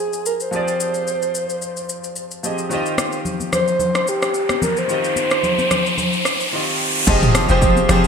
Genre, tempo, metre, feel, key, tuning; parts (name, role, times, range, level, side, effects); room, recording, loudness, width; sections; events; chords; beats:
amapiano; 110 BPM; 4/4; swing 55% on 16ths; F dorian; A4 = 440 Hz
breathy flute-like synth lead; melody; 0.0-6.8 s; G4 to C5; -21 LUFS; right 1 dB; chorus, ping-pong delay
bright grand piano; accompaniment; 0.0-8.1 s; Eb3 to G5; -22 LUFS; right 1 dB; analog chorus
deep house drum kit; drums; 0.1-8.1 s; crash cymbal, hi-hat, kick drum, rim click, shaker, toms; -22 LUFS; left 1 dB; overdrive, gated reverb
riser; sound effects; 3.9-7.1 s; -22 LUFS; equal
congas; percussion; 3.0-8.0 s; -24 LUFS; left 3 dB
deep log drum bass; bass; 7.1-8.1 s; F1; -19 LUFS; equal
moderate lush hall reverb, RT60 1.8 s; bright 1980s-style digital production; -16 LUFS; side -6 dB against mid
0.0-7.1 A section
riser 3.9-7.1; silent gap 6.5-7.1
0.0 Fm7; 2.7 Eb6; 7.1 Fm7
| 0.53 1.07 1.62 2.17 | 2.71 3.25 3.80 4.35 | 4.89 5.44 5.98 6.53 | 7.07 7.62